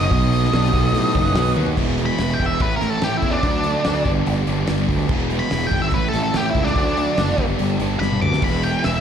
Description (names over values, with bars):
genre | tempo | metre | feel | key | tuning
classic rock | 144 BPM | 4/4 | straight | unclear | A4 = 440 Hz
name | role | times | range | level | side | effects
octave-fuzz lead guitar | melody | 0.0-9.0 s | D4 to D6 | -23 LUFS | equal | distortion, slapback echo, analog delay
picked steel-string acoustic guitar | accompaniment | 0.0-1.8 s | B2 to F#4 | -30 LUFS | left 3 dB | none
sludgy distorted guitar | riff | 0.0-9.0 s | E2 to G#4 | -26 LUFS | left 12 dB | overdrive, slapback echo
sludgy distorted guitar | riff | 0.0-9.0 s | G2 to F#4 | -24 LUFS | right 12 dB | overdrive, slapback echo
fuzz fingered electric bass | bass | 0.0-9.0 s | E1 to A2 | -22 LUFS | equal | overdrive
damped 70s drum kit | drums | 0.1-8.9 s | crash cymbal, hi-hat, kick drum, snare drum, toms | -24 LUFS | equal | none
overdriven slide guitar | second line | 0.5-1.7 s | D4 to B4 | -30 LUFS | left 6 dB | slapback echo
room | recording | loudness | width
small room ambience | live gig heard through the venue's PA, club reverb | -17 LUFS | side -8 dB against mid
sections
0.0-1.8 A section; 1.8-9.0 B section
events
drum fill 1.6, 8.0-8.4; lead electric guitar solo 1.8-9.0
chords
0.0 B; 1.8 E; 2.6 A; 3.4 D; 4.1 G; 5.1 E; 5.9 A; 6.8 D; 7.4 G; 8.4 E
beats
| 0.11 0.53 0.94 1.36 | 1.77 2.19 2.60 3.02 | 3.44 3.85 4.27 4.68 | 5.10 5.51 5.93 6.34 | 6.76 7.18 7.59 8.01 | 8.43 8.84